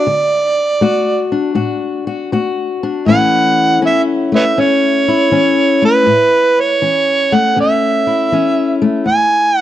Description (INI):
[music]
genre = acoustic country blues, solo or duo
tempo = 80 BPM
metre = 4/4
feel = swing 67% on 8ths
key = A major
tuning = A4 = 440 Hz
[part]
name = overdriven harmonica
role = melody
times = 0.0-9.6 s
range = B4 to G#5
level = -13 LUFS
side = right 3 dB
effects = none
[part]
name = fingerpicked steel-string acoustic guitar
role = accompaniment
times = 0.0-9.6 s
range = E2 to F#4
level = -15 LUFS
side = left 4 dB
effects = none
[sound]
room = light reverb, small room ambience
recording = dry, close 1970s-style studio recording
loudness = -11 LUFS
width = side -12 dB against mid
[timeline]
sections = 0.0-9.6 A section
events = none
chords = 0.0 D; 3.1 A; 9.1 E